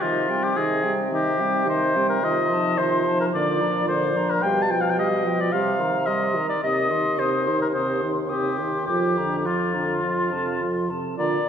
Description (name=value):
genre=quick classical-period movement for wind quintet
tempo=108 BPM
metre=4/4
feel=straight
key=Bb major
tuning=A4 = 444 Hz
part: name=hollow concert flute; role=melody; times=0.0-11.4 s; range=Eb5 to Eb6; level=-31 LUFS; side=left 4 dB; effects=none
part: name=warm oboe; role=second line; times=0.0-11.5 s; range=F4 to A5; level=-24 LUFS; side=left 2 dB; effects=none
part: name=mellow French horn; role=accompaniment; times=0.0-11.4 s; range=C3 to G3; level=-29 LUFS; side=equal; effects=none
part: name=mellow clarinet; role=accompaniment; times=0.0-11.4 s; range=C4 to Bb4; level=-29 LUFS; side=right 4 dB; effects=none
part: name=mellow bassoon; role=bass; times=0.0-11.5 s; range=Eb2 to C3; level=-27 LUFS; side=right 2 dB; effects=none
room=wet scoring stage reverb, RT60 2.0 s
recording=heard from further back in the room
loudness=-20 LUFS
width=side -8 dB against mid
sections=0.0-11.2 A section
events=none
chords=0.0 Cm; 2.2 F7/C; 3.3 Bb; 4.4 G7/B; 5.5 Cm7; 6.6 Cm/Eb; 8.9 Bb/F; 10.0 F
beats=| 0.02 0.57 1.12 1.68 | 2.23 2.78 3.33 3.88 | 4.43 4.98 5.53 6.08 | 6.64 7.20 7.75 8.31 | 8.89 9.46 10.04 10.61 | 11.18